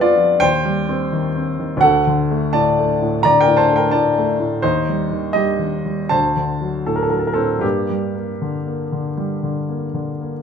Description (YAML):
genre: classical, romantic character piece for solo piano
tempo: 75-88 BPM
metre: 4/4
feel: rubato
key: G minor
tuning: A4 = 443 Hz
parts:
  - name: warm baby grand piano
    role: solo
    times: 0.0-10.4 s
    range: D2 to Bb5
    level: -16 LUFS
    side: equal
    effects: none
room: moderate studio reverb, RT60 0.6 s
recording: minimal, uncompressed stereo recording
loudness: -16 LUFS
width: side -7 dB against mid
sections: 0.0-10.4 A section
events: none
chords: 0.4 Cm/Eb; 1.8 D; 4.6 Cm/Eb; 6.1 D7; 7.6 Gm